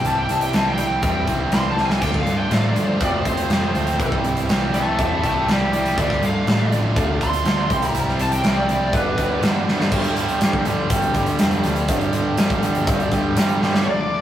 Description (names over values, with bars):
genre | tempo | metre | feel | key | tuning
quiet-loud alternative rock | 122 BPM | 4/4 | straight | unclear | A4 = 441 Hz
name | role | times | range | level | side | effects
lead guitar through a small cranked amp | melody | 0.0-9.4, 13.8-14.2 s | B4 to C6 | -24 LUFS | left 1 dB | overdrive
picked steel-string acoustic guitar | arpeggios | 0.0-1.8 s | E3 to E4 | -33 LUFS | left 4 dB | none
distorted electric guitar | riff | 0.0-14.2 s | G2 to F4 | -28 LUFS | left 4 dB | overdrive
tight distorted guitar | riff | 0.0-13.8 s | G2 to F4 | -24 LUFS | right 3 dB | distortion
hollow-body short-scale picked electric bass | bass | 0.0-13.8 s | F1 to A2 | -26 LUFS | equal | none
big rock drum kit | drums | 0.0-13.9 s | crash cymbal, hi-hat, kick drum, snare drum, splash cymbal | -21 LUFS | equal | none
overdriven semi-hollow guitar | riff | 9.9-13.9 s | G2 to G3 | -30 LUFS | left 1 dB | none
room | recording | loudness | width
moderate studio reverb, RT60 0.6 s | rough rehearsal-room recording | -17 LUFS | side -11 dB against mid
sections
0.0-9.9 A section; 9.9-13.9 B section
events
lead electric guitar solo 0.0-9.9; drum fill 1.8, 9.7, 13.6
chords
0.0 C; 2.0 Dm; 3.0 F; 4.0 C; 6.0 Dm; 7.7 C; 8.9 G; 9.9 G5